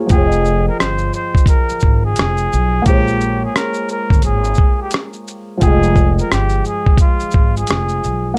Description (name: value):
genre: lo-fi hip hop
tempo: 87 BPM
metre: 4/4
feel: swing 64% on 16ths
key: unclear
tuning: A4 = 437 Hz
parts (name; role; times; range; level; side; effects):
- felt-muted upright piano; accompaniment; 0.0-8.4 s; F3 to G5; -23 LUFS; equal; plate reverb
- trumpet with straight mute; melody; 0.1-8.3 s; F4 to C5; -23 LUFS; equal; plate reverb
- upright bass; bass; 0.1-8.3 s; F1 to Cb2; -20 LUFS; equal; none
- dusty soul sampler-style drum kit; drums; 0.1-8.2 s; hi-hat, kick drum, rim click, shaker; -16 LUFS; equal; none
room: light reverb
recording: dark, warm production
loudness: -15 LUFS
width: mono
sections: 0.0-8.4 A section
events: none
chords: 0.1 Fm7; 2.9 Bbm7; 5.6 Fm7